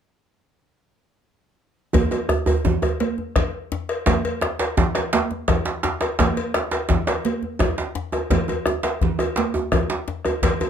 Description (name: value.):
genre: west african traditional, West African drum ensemble.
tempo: 113 BPM (dotted quarters).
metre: 12/8.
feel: straight.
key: none.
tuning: none.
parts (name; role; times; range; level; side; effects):
bombo; percussion; 1.9-10.6 s; none; -24 LUFS; left 2 dB; none.
congas; percussion; 1.9-10.6 s; none; -25 LUFS; right 6 dB; none.
cowbell; percussion; 1.9-10.7 s; none; -28 LUFS; left 4 dB; none.
djembe; percussion; 1.9-10.7 s; none; -29 LUFS; left 5 dB; none.
djembe; percussion; 1.9-10.7 s; none; -23 LUFS; right 3 dB; none.
room: moderate studio reverb, RT60 0.6 s.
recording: none.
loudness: -20 LUFS.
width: side -8 dB against mid.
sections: 1.9-10.7 A section.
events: none.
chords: none.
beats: | 1.94 2.47 3.00 3.54 | 4.07 4.60 5.13 5.66 | 6.19 6.72 7.25 7.78 | 8.31 8.84 9.37 9.90 | 10.43.